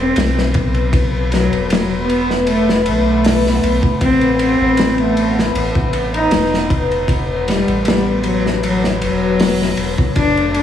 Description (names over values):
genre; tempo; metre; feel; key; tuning
trip hop; 78 BPM; 4/4; swing 53% on 16ths; unclear; A4 = 440 Hz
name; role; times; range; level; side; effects
rich cello; melody; 0.0-10.6 s; F#3 to D#4; -17 LUFS; left 1 dB; tape echo
dark analog pad; sustained chords; 0.0-10.6 s; A3 to B4; -20 LUFS; left 2 dB; chorus
warm sub bass; bass; 0.0-10.6 s; E1 to B1; -21 LUFS; equal; tube saturation
crunchy breakbeat drum kit; drums; 0.2-10.6 s; hi-hat, kick drum, ride cymbal, snare drum; -19 LUFS; equal; none
room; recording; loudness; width
light reverb, small room ambience; vinyl crackle; -13 LUFS; side -10 dB against mid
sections
0.0-10.6 A section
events
none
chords
0.0 E5; 4.0 Asus2